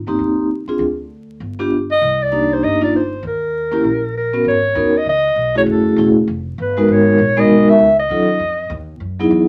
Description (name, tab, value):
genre	jazz, small-group swing and bop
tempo	197 BPM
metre	4/4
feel	swing 61% on 8ths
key	G# minor from 4.5 s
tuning	A4 = 440 Hz
part	upright bass	bass	0.0-9.5 s	E1 to F#2	-29 LUFS	equal	none
part	vibraphone with soft mallets	accompaniment	0.1-9.5 s	F#3 to Bb4	-16 LUFS	equal	none
part	mellow clarinet	melody	1.9-8.9 s	A4 to E5	-19 LUFS	equal	none
room	moderate studio ambience, RT60 0.5 s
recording	vinyl crackle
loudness	-16 LUFS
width	mono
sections	0.0-4.5 A section; 4.5-9.5 B section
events	none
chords	0.0 Abmaj7; 0.8 N.C.; 1.4 G7; 2.0 Cm7; 3.2 Eb7(no3); 4.5 G#m11; 5.7 F#m7; 6.3 Fsus2; 6.9 Emaj9#11; 8.1 D#m7b5; 8.7 G#5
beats	0.19 0.49 | 0.80 1.10 1.41 1.71 | 2.02 2.32 2.62 2.93 | 3.23 3.54 3.84 4.15 | 4.45 4.75 5.06 5.36 | 5.67 5.97 6.27 6.58 | 6.88 7.18 7.49 7.79 | 8.10 8.40 8.70 9.01 | 9.31